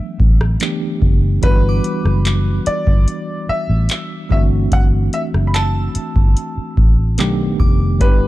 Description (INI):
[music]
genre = contemporary R&B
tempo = 73 BPM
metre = 4/4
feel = straight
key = G major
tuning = A4 = 440 Hz
[part]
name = warm baby grand piano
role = melody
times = 0.0-8.3 s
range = B4 to B5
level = -24 LUFS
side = left 1 dB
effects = tape echo
[part]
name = barky tine electric piano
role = accompaniment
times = 0.0-8.3 s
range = D#3 to G4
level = -22 LUFS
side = right 1 dB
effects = fast stereo tremolo
[part]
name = vintage muted fingered electric bass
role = bass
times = 0.0-8.3 s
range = F1 to B1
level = -16 LUFS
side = equal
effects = none
[part]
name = booming analog drum machine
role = drums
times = 0.2-8.2 s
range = handclaps, hi-hat, kick drum, rim click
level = -15 LUFS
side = equal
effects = none
[part]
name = glassy synth bell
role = texture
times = 1.4-8.3 s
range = B5 to E6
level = -34 LUFS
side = equal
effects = chorus, tremolo, phaser, tape echo
[sound]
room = little or no reverb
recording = dark, warm production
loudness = -14 LUFS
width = side -16 dB against mid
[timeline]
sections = 0.0-8.3 A section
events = none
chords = 0.0 Gmaj13; 4.3 D9; 7.2 B7alt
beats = 0.61 | 1.43 2.25 3.08 3.90 | 4.72 5.54 6.36 7.18 | 8.01